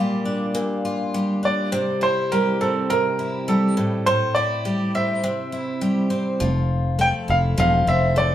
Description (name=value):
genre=pop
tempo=102 BPM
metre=4/4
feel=straight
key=F major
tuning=A4 = 440 Hz
part: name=bright upright piano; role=melody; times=0.0-8.3 s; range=A4 to G5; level=-22 LUFS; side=right 1 dB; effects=none
part: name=picked twelve-string acoustic guitar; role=accompaniment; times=0.0-8.3 s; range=A2 to F4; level=-22 LUFS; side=equal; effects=none
part: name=sustaining fretless electric bass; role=bass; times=6.4-8.3 s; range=E1 to F1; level=-21 LUFS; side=equal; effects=none
room=wet large studio reverb, RT60 1.0 s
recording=band playing live in one room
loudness=-19 LUFS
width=side -11 dB against mid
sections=0.0-6.4 A section; 6.4-8.3 B section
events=none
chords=0.0 Bb6; 1.7 C7; 3.8 Am7; 5.2 C; 6.4 Fmaj7